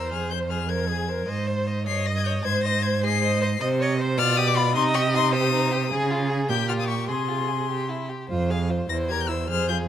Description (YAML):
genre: quick classical-period movement for string quartet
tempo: 103 BPM (dotted quarters)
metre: 6/8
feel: rubato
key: F minor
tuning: A4 = 440 Hz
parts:
  - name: warm violin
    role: melody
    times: 0.0-9.8 s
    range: B5 to C7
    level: -27 LUFS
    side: left 10 dB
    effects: none
  - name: rich violin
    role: second line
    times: 0.0-9.9 s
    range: Eb4 to F5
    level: -30 LUFS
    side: left 2 dB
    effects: none
  - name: rich viola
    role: accompaniment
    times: 0.0-9.9 s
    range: E4 to Eb5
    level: -29 LUFS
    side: right 1 dB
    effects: none
  - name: rich cello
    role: bass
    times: 0.0-9.9 s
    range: E2 to Db3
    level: -25 LUFS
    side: right 3 dB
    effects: none
room: light reverb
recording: close, detailed microphones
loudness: -22 LUFS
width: side -10 dB against mid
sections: 0.0-8.3 A section; 8.3-9.9 A section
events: none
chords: 0.1 Fm; 1.3 Ab; 1.9 Eb7/G; 2.4 Ab; 3.6 Cm; 4.2 G7/B; 4.8 Cm; 5.9 Db; 6.5 Bbm6; 7.1 Fm/C; 8.3 Fm; 8.9 C7/E